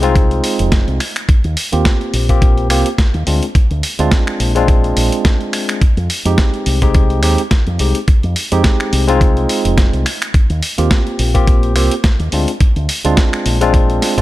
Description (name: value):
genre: nu-disco, nu disco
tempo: 106 BPM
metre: 4/4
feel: swing 55% on 16ths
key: F dorian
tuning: A4 = 441 Hz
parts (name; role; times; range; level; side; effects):
- barky tine electric piano; accompaniment; 0.0-14.2 s; Ab3 to G4; -18 LUFS; moving between left 5 dB and right 5 dB; overdrive, auto-pan, sidechain pumping, analog delay
- fingered electric bass with an envelope filter; bass; 0.0-14.2 s; F1 to F2; -16 LUFS; equal; sidechain pumping
- dusty soul sampler-style drum kit; drums; 0.0-14.2 s; finger snaps, hi-hat, snare drum; -20 LUFS; equal; none
- electronic kick drum; drums; 0.2-14.2 s; none; -12 LUFS; equal; none
room: digital ambience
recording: none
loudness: -12 LUFS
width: side -16 dB against mid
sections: 0.0-14.2 A section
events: none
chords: 0.0 Fm7; 1.0 Eb69; 3.3 Bb9; 5.8 Fm7; 10.1 Eb69; 12.3 Bb9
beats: 0.16 0.72 | 1.29 1.85 2.42 2.99 | 3.55 4.12 4.68 5.25 | 5.82 6.38 6.95 7.51 | 8.08 8.65 9.21 9.78 | 10.34 10.91 11.48 12.04 | 12.61 13.17 13.74